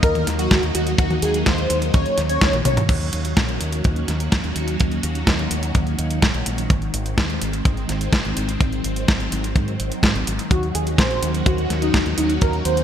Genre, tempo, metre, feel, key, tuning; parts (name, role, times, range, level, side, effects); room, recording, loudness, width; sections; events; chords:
italo disco; 126 BPM; 4/4; straight; Eb dorian; A4 = 440 Hz
wide unison lead; melody; 0.0-2.8, 10.5-12.8 s; Eb4 to Db5; -23 LUFS; equal; lush chorus, digital delay, shimmer reverb
phased string machine; sustained chords; 0.0-12.8 s; Eb3 to Gb4; -26 LUFS; equal; ensemble chorus, phaser, shimmer reverb
fingered electric bass with an envelope filter; bass; 0.0-12.8 s; Ab1 to Ab2; -25 LUFS; equal
detuned 8-bit digital drum machine; drums; 0.0-12.8 s; crash cymbal, hi-hat, snare drum, toms; -24 LUFS; equal; gated reverb
kick drum; drums; 0.0-12.5 s; -19 LUFS; equal
moderate lush hall reverb, RT60 2.8 s; bright 1980s-style digital production; -18 LUFS; side -9 dB against mid
0.0-2.9 A section; 2.9-12.8 B section
drum fill 2.5-2.9
0.0 Ebm; 2.9 Ebm7; 6.7 Ab; 10.5 Ebm7